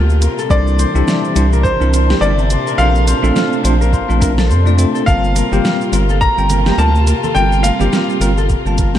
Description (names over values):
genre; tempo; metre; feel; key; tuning
sunset chillout; 105 BPM; 4/4; swing 58% on 16ths; G minor; A4 = 442 Hz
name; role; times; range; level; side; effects
bell-like tine electric piano; accompaniment; 0.0-9.0 s; G3 to A5; -20 LUFS; moving between left 4 dB and right 6 dB; fast stereo tremolo, auto-pan, ping-pong delay
warm symphonic string section; sustained chords; 0.0-9.0 s; Bb2 to F4; -23 LUFS; equal; none
Celtic harp; arpeggios; 0.0-9.0 s; E4 to C5; -22 LUFS; left 6 dB; ping-pong delay
round analog bass; bass; 0.0-9.0 s; G1 to F2; -14 LUFS; equal; none
smooth R&B drum kit; drums; 0.1-9.0 s; hi-hat, shaker, snare drum; -22 LUFS; right 1 dB; studio reverb
clear baby grand piano; melody; 0.5-9.0 s; C5 to Bb5; -20 LUFS; left 1 dB; tape echo
electronic kick drum; drums; 0.5-8.9 s; none; -17 LUFS; equal; studio reverb
congas; percussion; 5.5-9.0 s; none; -26 LUFS; right 4 dB; none
room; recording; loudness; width
light reverb; dark, warm production; -11 LUFS; side -11 dB against mid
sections
0.0-9.0 A section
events
none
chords
0.0 Gm11; 0.5 C9; 2.8 Bbmaj9; 5.1 Gm11